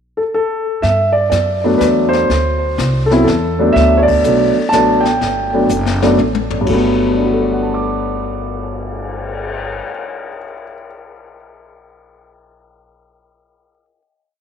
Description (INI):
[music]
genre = jazz piano trio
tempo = 123 BPM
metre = 3/4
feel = swing 66% on 8ths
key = G major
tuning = A4 = 442 Hz
[part]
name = warm concert grand piano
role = melody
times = 0.2-10.9 s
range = G2 to D6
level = -14 LUFS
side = equal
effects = tape echo
[part]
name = upright bass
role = bass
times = 0.8-9.8 s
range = F#1 to G2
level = -20 LUFS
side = right 1 dB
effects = none
[part]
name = jazz brush drum kit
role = drums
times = 0.8-9.5 s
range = brushed snare drum, crash cymbal, cymbal swell, hi-hat, kick drum, ride cymbal, snare drum, toms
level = -25 LUFS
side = left 6 dB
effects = none
[sound]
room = wet plate reverb, RT60 1.9 s, small room ambience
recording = 1960s-style stereo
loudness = -13 LUFS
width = side -7 dB against mid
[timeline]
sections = 0.0-0.8 pickup bar; 0.8-6.7 A section; 6.7-9.6 final chord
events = band accent 4.0; drum fill 5.7-6.7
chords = 0.0 N.C.; 0.8 Gmaj9; 2.3 D13; 3.8 Gmaj9